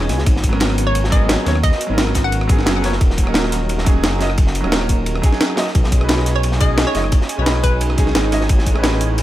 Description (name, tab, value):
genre	liquid drum and bass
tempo	175 BPM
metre	4/4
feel	straight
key	G# minor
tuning	A4 = 439 Hz
part	bright concert grand piano	accompaniment	0.0-9.2 s	F#3 to D#5	-23 LUFS	right 1 dB	tape echo
part	warm analog pad	sustained chords	0.0-9.2 s	B3 to G#5	-28 LUFS	right 3 dB	chorus, sidechain pumping
part	dark detuned saw bass	bass	0.0-9.2 s	D#1 to D#2	-19 LUFS	equal	none
part	jungle sampler-style drum kit	drums	0.0-9.2 s	hi-hat, rim click, snare drum	-22 LUFS	equal	none
part	crunchy breakbeat drum kit	drums	0.1-9.2 s	ride cymbal, snare drum	-25 LUFS	equal	high-pass filter on cymbals, high-pass filter on snare, high-pass filter on room
part	electronic kick drum	drums	0.3-8.7 s	none	-15 LUFS	equal	none
part	hollow square pluck	melody	0.9-2.5, 6.4-8.1 s	B4 to F#5	-24 LUFS	left 1 dB	chorus, ping-pong delay
room	studio ambience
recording	none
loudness	-14 LUFS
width	side -14 dB against mid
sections	0.0-9.2 A section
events	none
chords	0.3 G#m11; 3.0 D#m7; 5.8 B69; 8.5 Amaj9#11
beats	| 0.27 0.61 0.95 1.29 | 1.64 1.98 2.32 2.67 | 3.01 3.35 3.69 4.04 | 4.38 4.72 5.07 5.41 | 5.75 6.09 6.44 6.78 | 7.12 7.46 7.81 8.15 | 8.49 8.84 9.18